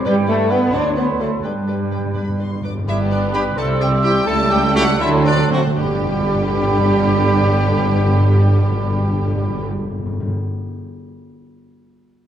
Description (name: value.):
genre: quick classical-period movement for symphony orchestra.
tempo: 75-89 BPM (dotted quarters).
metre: 6/8.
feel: rubato.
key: G major.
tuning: A4 = 445 Hz.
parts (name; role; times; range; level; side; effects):
clear clarinet; second line; 0.0-9.6 s; C4 to B4; -27 LUFS; left 1 dB; none.
dark cor anglais; second line; 0.0-9.6 s; G4 to C5; -29 LUFS; right 2 dB; none.
mellow flute section; second line; 0.0-9.6 s; G4 to E6; -25 LUFS; right 4 dB; none.
warm studio violin section; second line; 0.0-9.6 s; B3 to D5; -29 LUFS; left 1 dB; none.
mellow bassoon; accompaniment; 0.0-9.6 s; F#3 to G3; -27 LUFS; right 1 dB; none.
mellow French horn section; sustained chords; 0.0-9.6 s; G3 to E4; -25 LUFS; left 2 dB; none.
warm chamber cello section; bass; 0.0-9.6 s; G2 to D4; -24 LUFS; right 2 dB; none.
rich studio violin section; melody; 0.1-9.6 s; G4 to D6; -27 LUFS; left 3 dB; none.
warm symphonic viola section; accompaniment; 0.1-9.6 s; D3 to C5; -25 LUFS; right 1 dB; none.
warm chamber double bass section; bass; 0.1-9.6 s; G1 to G2; -23 LUFS; right 4 dB; none.
timpani; percussion; 0.1-10.3 s; G2 to D3; -21 LUFS; left 1 dB; none.
clear trumpet; stabs; 3.3-9.6 s; F#4 to G4; -27 LUFS; left 1 dB; none.
room: wet scoring stage reverb, RT60 1.6 s.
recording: dark, warm production.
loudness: -15 LUFS.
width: side -10 dB against mid.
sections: 0.0-2.9 A section; 2.9-5.8 B section; 5.8-8.9 C section.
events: timpani fill 1.4-2.9, 5.0-5.8; slowing down 2.2-5.8.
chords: 0.1 G; 0.7 D7; 1.4 G; 3.6 C; 4.3 A7/C#; 5.0 D7; 5.8 G.